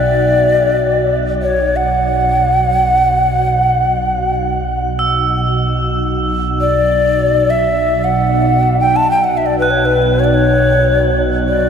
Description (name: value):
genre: world meditative, free-time meditation music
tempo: free time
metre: none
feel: none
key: B minor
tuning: A4 = 440 Hz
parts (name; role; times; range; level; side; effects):
- mellow hollow Native American-style cedar flute; melody; 0.0-11.7 s; B4 to A5; -14 LUFS; left 1 dB; shimmer reverb
- organ-like drone; drone; 0.0-11.7 s; B1; -16 LUFS; right 1 dB; ensemble chorus, built-in reverb
- crotales; texture; 0.0-11.7 s; E6 to A6; -23 LUFS; right 3 dB; shimmer reverb
room: wet huge ambient reverb, RT60 8.0 s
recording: none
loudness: -12 LUFS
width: side -7 dB against mid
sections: 0.0-11.7 A section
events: none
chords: none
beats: free time